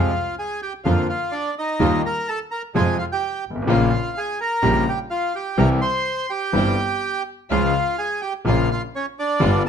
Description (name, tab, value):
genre	tango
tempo	126 BPM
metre	4/4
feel	rubato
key	unclear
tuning	A4 = 439 Hz
part	bandoneon	melody	0.0-9.7 s	Db4 to C6	-23 LUFS	right 1 dB	none
part	clear concert grand piano	accompaniment	0.0-9.6 s	G1 to G4	-20 LUFS	left 2 dB	none
part	dark chamber string section	stabs	0.0-9.6 s	G3 to G4	-30 LUFS	equal	none
part	clear double bass	bass	0.0-9.6 s	G1 to F2	-23 LUFS	right 2 dB	none
room	moderate large studio reverb, RT60 0.9 s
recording	close, detailed microphones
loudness	-19 LUFS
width	side -7 dB against mid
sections	0.0-9.7 A section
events	none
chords	0.0 Fm; 0.9 Bb/F; 1.8 Ebadd9; 2.8 Fm; 3.7 Bbm; 4.6 Gdim/Bb; 5.6 C; 7.5 Db; 8.5 Bbm